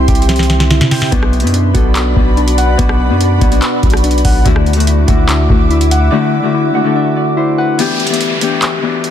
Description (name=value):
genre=hip hop, trap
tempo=144 BPM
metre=4/4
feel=half-time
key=E minor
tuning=A4 = 442 Hz
part: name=ethereal airy pad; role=sustained chords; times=0.0-7.8 s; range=F#4 to D6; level=-21 LUFS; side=equal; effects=ensemble chorus, built-in reverb
part: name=soft electric-piano-like synth keys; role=arpeggios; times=0.0-7.8 s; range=B3 to G5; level=-17 LUFS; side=right 2 dB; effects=chorus, tape echo
part: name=long sustained 808-style bass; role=bass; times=0.0-6.1 s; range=B1 to C3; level=-13 LUFS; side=equal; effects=none
part: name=booming analog drum machine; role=drums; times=0.1-9.1 s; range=handclaps, hi-hat, kick drum, rim click, snare drum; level=-14 LUFS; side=equal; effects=none
part: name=Celtic harp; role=accompaniment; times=1.1-9.1 s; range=B2 to F#5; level=-16 LUFS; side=left 8 dB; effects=none
part: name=downlifter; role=sound effects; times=7.8-9.1 s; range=none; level=-18 LUFS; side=equal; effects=none
room=little or no reverb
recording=dense, heavily limited modern master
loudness=-10 LUFS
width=side -10 dB against mid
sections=0.0-7.8 A section; 7.8-9.1 B section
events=drum fill 0.3-1.1; break 6.1-7.8; kick muted 7.8-9.1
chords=0.0 C; 1.1 Bm; 4.5 Dadd9; 7.8 Em7